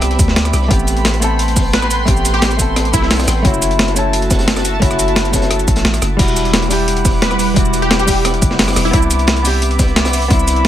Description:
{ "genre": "liquid drum and bass", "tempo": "175 BPM", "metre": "4/4", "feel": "straight", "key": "E minor", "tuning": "A4 = 440 Hz", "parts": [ { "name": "hollow-body jazz guitar", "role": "accompaniment", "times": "0.0-10.7 s", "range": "G3 to A4", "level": "-19 LUFS", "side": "equal", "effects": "tape echo" }, { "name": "airy breathy pad", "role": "sustained chords", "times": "0.0-10.7 s", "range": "G3 to D6", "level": "-22 LUFS", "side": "right 2 dB", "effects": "chorus" }, { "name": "long sustained 808-style bass", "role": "bass", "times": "0.0-10.7 s", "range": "E1 to D2", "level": "-18 LUFS", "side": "equal", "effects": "none" }, { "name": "breakbeat sampler-style drum kit", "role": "drums", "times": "0.0-10.7 s", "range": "crash cymbal, hi-hat, rim click, shaker, snare drum", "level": "-17 LUFS", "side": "equal", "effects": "none" }, { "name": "crunchy breakbeat drum kit", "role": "drums", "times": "0.0-10.7 s", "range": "hi-hat, snare drum", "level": "-24 LUFS", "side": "equal", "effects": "high-pass filter on hats, high-pass filter on snare, high-pass filter on room" }, { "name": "electronic kick drum", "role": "drums", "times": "0.2-10.4 s", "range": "none", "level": "-16 LUFS", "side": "equal", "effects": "overdrive" }, { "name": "plucky unison lead", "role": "melody", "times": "1.7-3.2, 7.2-9.0 s", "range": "E4 to B4", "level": "-21 LUFS", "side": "equal", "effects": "analog chorus, cassette tape, tape echo" } ], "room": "digital ambience", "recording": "none", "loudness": "-11 LUFS", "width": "side -11 dB against mid", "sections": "0.0-10.7 A section", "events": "none", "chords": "0.0 Cmaj9; 0.7 Am9; 3.4 F#m7; 6.2 Em9; 8.9 Cmaj9", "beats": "0.02 0.36 | 0.71 1.05 1.39 1.74 | 2.08 2.42 2.76 3.11 | 3.45 3.79 4.13 4.48 | 4.82 5.16 5.51 5.85 | 6.19 6.54 6.88 7.22 | 7.56 7.91 8.25 8.59 | 8.94 9.28 9.62 9.96 | 10.31 10.65" }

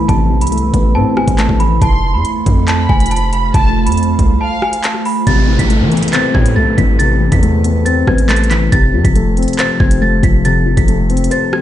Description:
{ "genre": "hip hop, drill", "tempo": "139 BPM", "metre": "4/4", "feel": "half-time", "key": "A minor", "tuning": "A4 = 438 Hz", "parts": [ { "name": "worn celesta", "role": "melody", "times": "0.0-11.6 s", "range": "G#5 to B6", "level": "-19 LUFS", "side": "right 4 dB", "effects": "low-pass filter, digital delay" }, { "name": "felt-muted upright piano", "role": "accompaniment", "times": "0.0-1.8, 5.3-11.6 s", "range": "C3 to C5", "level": "-16 LUFS", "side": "left 4 dB", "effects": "low-pass filter" }, { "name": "glassy FM pad", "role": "sustained chords", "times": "0.0-11.6 s", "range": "C3 to C5", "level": "-21 LUFS", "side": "right 3 dB", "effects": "ensemble chorus, built-in reverb" }, { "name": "hard-hitting 808-style bass", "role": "bass", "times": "0.0-11.3 s", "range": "F1 to E3", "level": "-15 LUFS", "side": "equal", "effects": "none" }, { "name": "drill drum kit", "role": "drums", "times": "0.1-11.6 s", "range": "handclaps, hi-hat, kick drum, rim click", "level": "-15 LUFS", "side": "equal", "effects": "none" }, { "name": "dark studio violin section", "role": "second line", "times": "1.8-4.8 s", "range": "F5 to C6", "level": "-23 LUFS", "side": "equal", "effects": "digital delay" }, { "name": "downlifter", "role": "sound effects", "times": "5.3-8.7 s", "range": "none", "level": "-24 LUFS", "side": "right 1 dB", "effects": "none" } ], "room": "little or no reverb", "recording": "played on a big sound system in a bare room, stone room reverb, nothing above 10.4 kHz", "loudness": "-10 LUFS", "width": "side -12 dB against mid", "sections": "0.0-5.3 A section; 5.3-11.6 B section", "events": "break 0.0-1.8, 4.4-5.3; kick muted 11.3-11.6", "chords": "0.0 Amadd9; 1.8 F; 5.3 Amadd9; 8.7 F", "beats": "| 0.09 0.52 0.95 1.39 | 1.82 2.25 2.68 3.11 | 3.54 3.98 4.41 4.84 | 5.27 5.70 6.13 6.56 | 7.00 7.43 7.86 8.29 | 8.72 9.15 9.59 10.02 | 10.45 10.88 11.31" }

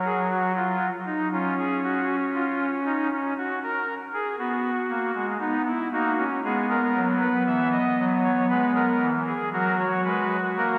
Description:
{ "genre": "classical, baroque-style 4-part fugue for pipe organ", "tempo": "59 BPM", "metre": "4/4", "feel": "straight", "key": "unclear", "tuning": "A4 = 440 Hz", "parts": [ { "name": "pipe organ, soft reed", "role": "solo", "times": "0.0-10.8 s", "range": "E3 to E5", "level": "-25 LUFS", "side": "equal", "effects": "none" } ], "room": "wet church reverb, RT60 3.6 s", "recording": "heard from further back in the room", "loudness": "-25 LUFS", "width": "mono", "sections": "0.0-10.8 A section", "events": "none", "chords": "0.0 G#5; 1.3 C#; 3.4 F#; 5.4 B; 7.5 C#m/E (rootless); 9.5 F#", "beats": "0.31 | 1.32 2.34 3.36 4.38 | 5.40 6.43 7.46 8.49 | 9.53 10.56" }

